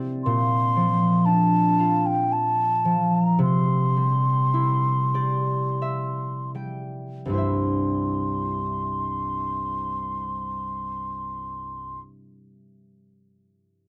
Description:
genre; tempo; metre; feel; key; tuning
celtic folk, Celtic slow air; 37-59 BPM; 3/4; rubato; C mixolydian; A4 = 440 Hz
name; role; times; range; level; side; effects
concert harp; accompaniment; 0.0-12.1 s; C2 to G5; -26 LUFS; equal; none
mellow hollow baroque flute; melody; 0.2-12.0 s; G5 to C6; -28 LUFS; equal; none
room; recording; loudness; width
little or no reverb; dry, close 1970s-style studio recording; -24 LUFS; mono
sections
0.3-7.3 A section; 7.3-11.9 B section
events
harp fill 0.0, 4.5-7.3; slowing down 0.3-7.3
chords
0.3 Bbadd9; 3.4 C

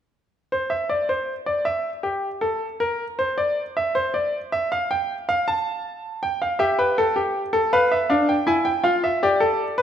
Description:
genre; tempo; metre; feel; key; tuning
classical, baroque-style 3-part fugue for grand piano; 79 BPM; 4/4; straight; unclear; A4 = 442 Hz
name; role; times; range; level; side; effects
bright grand piano; solo; 0.5-9.8 s; D4 to A5; -20 LUFS; equal; none
room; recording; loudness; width
wet recital hall reverb, RT60 1.7 s; none; -20 LUFS; side -9 dB against mid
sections
0.1-9.8 A section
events
none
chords
0.1 N.C.; 6.2 G13; 7.7 Bdim7; 9.2 G5

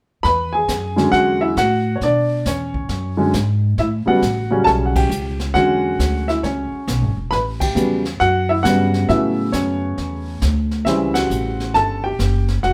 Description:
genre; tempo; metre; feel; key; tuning
jazz piano trio; 136 BPM; 4/4; swing 66% on 8ths; unclear; A4 = 440 Hz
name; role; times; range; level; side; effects
warm baby grand piano; melody; 0.2-12.7 s; C#3 to B5; -20 LUFS; equal; none
upright bass; bass; 0.2-12.7 s; E1 to B2; -24 LUFS; equal; none
jazz brush drum kit; drums; 0.2-12.7 s; brushed snare drum, hi-hat, kick drum, ride cymbal, snare drum; -30 LUFS; equal; none
room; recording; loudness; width
light reverb; band playing live in one room; -18 LUFS; mono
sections
0.2-12.7 A section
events
band accent 4.9, 7.5, 11.1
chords
0.2 E13; 3.8 A13; 5.5 E13; 7.3 A13; 10.9 A7#9

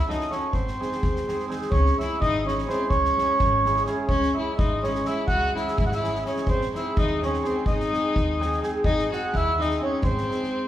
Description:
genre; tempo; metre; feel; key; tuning
balkan folk, Balkan wedding band; 252 BPM (eighths); 5/8; straight; unclear; A4 = 437 Hz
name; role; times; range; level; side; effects
mellow accordion; melody; 0.0-10.7 s; B#4 to F#5; -26 LUFS; right 1 dB; none
warm violin; second line; 0.0-10.7 s; B#3 to F#4; -30 LUFS; left 2 dB; none
hammered dulcimer; accompaniment; 0.1-10.7 s; G#3 to A4; -30 LUFS; right 1 dB; none
soft-mallet drum kit; percussion; 0.1-10.5 s; kick drum, snare drum; -28 LUFS; equal; none
upright bass; bass; 0.5-10.2 s; G#1 to D#2; -29 LUFS; equal; none
room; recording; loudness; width
wet recital hall reverb, RT60 1.5 s; recorded in a church or concert hall; -22 LUFS; side -12 dB against mid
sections
0.0-1.7 A section; 1.7-10.7 B section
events
none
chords
0.0 F#m; 0.5 G#; 1.7 C#m; 6.5 G#

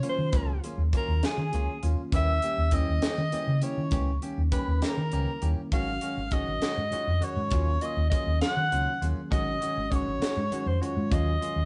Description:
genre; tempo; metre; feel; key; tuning
electric jazz fusion; 67 BPM (dotted quarters); 6/8; straight; unclear; A4 = 440 Hz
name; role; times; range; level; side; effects
warm soprano saxophone; melody; 0.0-11.7 s; Ab4 to Gb5; -35 LUFS; equal; none
mellow concert flute; second line; 0.0-11.7 s; Ab5 to Gb6; -38 LUFS; equal; none
tine electric piano; accompaniment; 0.0-11.7 s; Eb3 to Ab4; -37 LUFS; equal; overdrive, phaser
direct-recorded clean electric guitar; stabs; 0.0-11.6 s; Eb3 to G4; -43 LUFS; equal; none
tight funk drum kit; drums; 0.0-11.6 s; hi-hat, kick drum, snare drum; -33 LUFS; equal; none
hollow-body short-scale fingered electric bass; bass; 0.2-11.7 s; Ab1 to Eb3; -30 LUFS; equal; none
room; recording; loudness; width
moderate stone room reverb, RT60 1.2 s; band playing live in one room, nothing above 10.7 kHz; -28 LUFS; mono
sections
0.0-11.7 A section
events
none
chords
0.0 Ebm9; 2.1 Eb7b9; 5.7 Ab7sus4; 7.5 Ebm9; 9.3 Ab7sus4; 11.1 Ebm11

